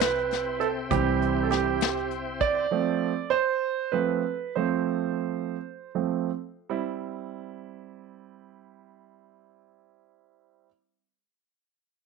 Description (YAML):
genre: six-eight pop ballad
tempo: 51-67 BPM (dotted quarters)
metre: 6/8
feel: straight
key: C major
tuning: A4 = 440 Hz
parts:
  - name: clear grand piano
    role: accompaniment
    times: 0.0-10.7 s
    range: E3 to D5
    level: -26 LUFS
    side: right 10 dB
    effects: none
  - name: tonewheel organ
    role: sustained chords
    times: 0.0-2.7 s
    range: C3 to G4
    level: -33 LUFS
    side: left 3 dB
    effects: chorus vibrato, lush chorus
  - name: vintage muted fingered electric bass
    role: bass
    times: 0.0-2.7 s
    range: C2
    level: -34 LUFS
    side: left 3 dB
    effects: none
  - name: vintage brush drum kit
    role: drums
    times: 0.0-2.5 s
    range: hi-hat, kick drum, snare drum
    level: -29 LUFS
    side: left 9 dB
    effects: none
room: moderate spring reverb, RT60 1.2 s, studio reverb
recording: 1960s-style stereo with parts hard left and right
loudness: -25 LUFS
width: side -4 dB against mid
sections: 0.0-6.7 A section; 6.7-11.4 B section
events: grand piano solo 0.0-6.7; slowing down 2.7-6.7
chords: 0.0 C; 2.7 F; 6.7 C